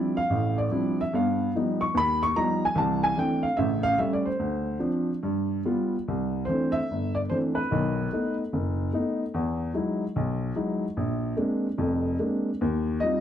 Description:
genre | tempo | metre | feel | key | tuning
solo jazz | 146 BPM | 4/4 | swing 67% on 8ths, rubato | C major | A4 = 440 Hz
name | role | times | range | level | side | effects
dark upright piano | solo | 0.0-13.2 s | F1 to Db6 | -24 LUFS | equal | none
room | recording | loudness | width
moderate club reverb, RT60 0.8 s | dark, warm production | -24 LUFS | side -10 dB against mid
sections
0.0-6.1 A section; 6.1-13.2 B section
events
upright piano solo 0.0-6.1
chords
0.0 Dm11; 1.1 Gaug7; 2.8 C69; 3.6 A7; 4.4 Dm7; 5.2 G7; 6.1 C69; 7.7 B7; 9.3 Emaj9; 11.0 Bb9; 12.6 Eb69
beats
0.31 0.72 | 1.12 1.53 1.94 2.35 | 2.75 3.16 3.57 3.98 | 4.39 4.80 5.22 5.65 | 6.06 6.48 6.89 7.30 | 7.71 8.12 8.52 8.93 | 9.34 9.74 10.15 10.55 | 10.96 11.36 11.78 12.19 | 12.61 13.03

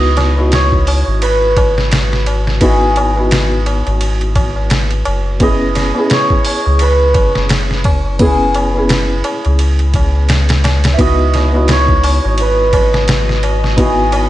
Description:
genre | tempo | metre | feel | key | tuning
trip hop | 86 BPM | 4/4 | swing 58% on 16ths | C# minor | A4 = 440 Hz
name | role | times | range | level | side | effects
cimbalom | melody | 0.0-14.3 s | G#4 to E5 | -17 LUFS | right 1 dB | tape echo
felt-muted upright piano | accompaniment | 0.0-14.3 s | B3 to G#4 | -18 LUFS | equal | harmonic tremolo, tape echo
soft dub sub bass | bass | 0.0-14.3 s | F#1 to C#2 | -15 LUFS | equal | none
trip hop sampler-style drum kit | drums | 0.2-14.3 s | hi-hat, kick drum, ride cymbal, snare drum | -16 LUFS | equal | none
tabla | percussion | 0.2-14.3 s | none | -25 LUFS | left 1 dB | none
bowed-like drone | texture | 12.3-14.3 s | D#5 | -27 LUFS | right 1 dB | built-in reverb
room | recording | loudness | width
little or no reverb | nothing above 10.7 kHz | -10 LUFS | side -14 dB against mid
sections
0.0-14.3 A section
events
none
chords
0.0 C#m11; 5.4 F#7sus4; 11.0 C#m11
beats
0.52 1.22 1.92 | 2.62 3.31 4.01 4.71 | 5.41 6.10 6.80 7.50 | 8.20 8.89 9.59 10.29 | 10.99 11.69 12.38 13.08 | 13.78

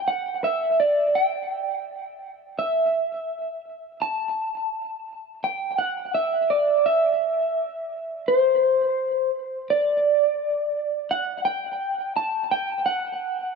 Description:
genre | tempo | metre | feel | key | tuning
rock | 84 BPM | 4/4 | straight | unclear | A4 = 440 Hz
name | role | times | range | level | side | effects
electric guitar through a small old amp | melody | 0.0-13.5 s | C5 to A5 | -22 LUFS | right 1 dB | analog chorus, tape echo
room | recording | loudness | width
moderate echo chamber reverb, RT60 1.4 s | dark, warm production | -21 LUFS | side -4 dB against mid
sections
0.0-13.6 A section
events
none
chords
none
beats
0.44 | 1.15 1.86 2.57 3.29 | 4.00 4.71 5.42 6.13 | 6.84 7.55 8.26 8.97 | 9.69 10.40 11.11 11.82 | 12.53 13.23

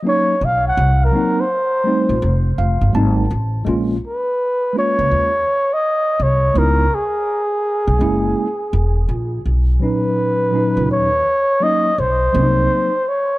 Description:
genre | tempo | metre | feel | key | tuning
hip hop, jazz-hop | 83 BPM | 4/4 | swing 64% on 16ths | unclear | A4 = 440 Hz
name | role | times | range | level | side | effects
mellow tine electric piano | accompaniment | 0.0-12.9 s | A#2 to A5 | -19 LUFS | equal | medium stereo tremolo
breathy flugelhorn | melody | 0.1-13.4 s | Ab4 to F#5 | -17 LUFS | equal | tape echo
upright bass | bass | 0.4-12.7 s | Fb1 to Eb2 | -17 LUFS | equal | none
room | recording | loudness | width
light reverb | none | -15 LUFS | side -18 dB against mid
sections
0.0-3.7 A section; 3.7-13.4 B section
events
flugelhorn solo 0.0-3.7; tine electric piano fill 2.2-3.7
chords
0.0 Bmaj9; 0.8 Cm7b5; 2.2 F7; 3.7 Bbm7; 6.6 Dbm7; 8.0 Gb7; 9.5 Bmaj9; 12.3 Cm7b5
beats
0.06 | 0.78 1.50 2.22 2.95 | 3.67 4.39 5.12 5.84 | 6.56 7.29 8.01 8.73 | 9.45 10.18 10.90 11.62 | 12.35 13.07

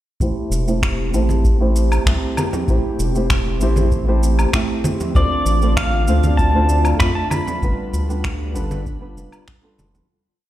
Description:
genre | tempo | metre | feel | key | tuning
sunset chillout | 97 BPM | 4/4 | straight | A minor | A4 = 440 Hz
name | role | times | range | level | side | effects
nylon-string guitar | accompaniment | 0.2-10.1 s | G3 to E5 | -24 LUFS | right 1 dB | auto-pan, low-pass filter, ping-pong delay
airy breathy pad | sustained chords | 0.2-10.1 s | D3 to D5 | -26 LUFS | right 1 dB | chorus
round analog bass | bass | 0.2-10.0 s | E1 to F2 | -18 LUFS | equal | none
electronic kick drum | drums | 0.2-9.6 s | none | -20 LUFS | equal | none
electronic shaker, finger snaps and woodblock | drums | 0.2-10.1 s | none | -26 LUFS | equal | overdrive
congas | percussion | 1.3-10.1 s | none | -24 LUFS | right 1 dB | none
pedal steel guitar | melody | 5.2-9.4 s | D5 to B5 | -22 LUFS | equal | ping-pong delay
room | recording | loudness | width
little or no reverb | played on a big sound system in a bare room, stone room reverb | -16 LUFS | side -14 dB against mid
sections
0.2-10.1 groove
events
filter sweep on nylon-string guitar 0.2-10.1; fade-out 6.8-10.1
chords
0.2 Am7; 5.2 Dm7; 7.6 G7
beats
| 0.20 0.82 1.44 2.06 | 2.68 3.30 3.92 4.53 | 5.15 5.77 6.39 7.01 | 7.63 8.24 8.86 9.48

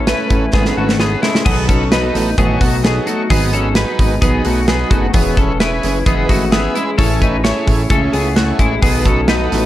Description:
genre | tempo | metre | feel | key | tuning
jangly indie pop | 130 BPM | 4/4 | straight | unclear | A4 = 441 Hz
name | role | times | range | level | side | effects
fingerpicked steel-string acoustic guitar | accompaniment | 0.0-9.7 s | G#2 to B4 | -22 LUFS | right 4 dB | none
phased analog pad | sustained chords | 0.0-1.4, 9.1-9.7 s | C#3 to F#4 | -27 LUFS | left 2 dB | none
twelve-string electric guitar | arpeggios | 0.0-9.7 s | G#3 to C#5 | -19 LUFS | left 5 dB | analog chorus, tape echo
fat analog bass | bass | 0.0-9.7 s | E1 to C#2 | -19 LUFS | equal | none
overdriven combo organ | accompaniment | 0.1-9.7 s | C#4 to E5 | -23 LUFS | right 4 dB | none
modern studio drum kit | drums | 0.1-9.6 s | crash cymbal, hi-hat, kick drum, snare drum | -16 LUFS | equal | none
room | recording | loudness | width
light reverb, studio ambience | dark, warm production | -12 LUFS | side -14 dB against mid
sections
0.0-1.5 A section; 1.5-9.7 B section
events
drum fill 0.5-1.5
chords
0.0 B7sus4; 1.5 B7; 3.3 G#m7; 5.1 E6; 7.0 Amaj7; 8.8 B7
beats
0.07 0.53 0.99 | 1.46 1.92 2.38 2.84 | 3.30 3.76 4.22 4.68 | 5.14 5.60 6.06 6.53 | 6.99 7.45 7.91 8.37 | 8.82 9.29

